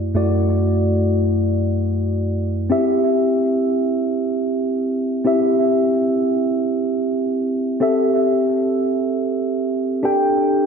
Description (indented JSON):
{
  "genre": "pop",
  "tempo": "free time",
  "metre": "none",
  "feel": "none",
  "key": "unclear",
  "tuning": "A4 = 441 Hz",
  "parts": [
    { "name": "mellow tine electric piano", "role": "solo", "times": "0.0-10.7 s", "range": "F#2 to G5", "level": "-17 LUFS", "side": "equal", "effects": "wide subtle chorus, analog delay" }
  ],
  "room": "wet plate reverb, RT60 2.8 s",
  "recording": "dreamy mix soaked in reverb, nothing above 10.8 kHz",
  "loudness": "-17 LUFS",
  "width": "side -6 dB against mid",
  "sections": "0.0-2.7 A section; 2.7-10.7 B section",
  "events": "none",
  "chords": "0.0 Dadd9/F#; 2.7 C; 7.8 Am7; 10.1 Dsus4"
}